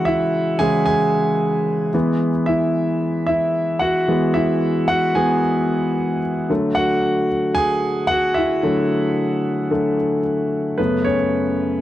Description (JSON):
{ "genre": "pop", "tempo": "112 BPM", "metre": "4/4", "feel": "straight", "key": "unclear", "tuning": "A4 = 440 Hz", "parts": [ { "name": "warm concert grand piano", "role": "solo", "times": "0.0-11.8 s", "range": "F#2 to G#5", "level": "-17 LUFS", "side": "equal", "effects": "none" } ], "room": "little or no reverb", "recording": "dry, close 1970s-style studio recording", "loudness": "-17 LUFS", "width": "side -13 dB against mid", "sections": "0.0-10.8 A section; 10.8-11.8 B section", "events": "grand piano solo 0.0-10.8, 10.8-11.8", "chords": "0.0 C#m; 1.9 E; 6.5 Dadd9; 10.8 F#m" }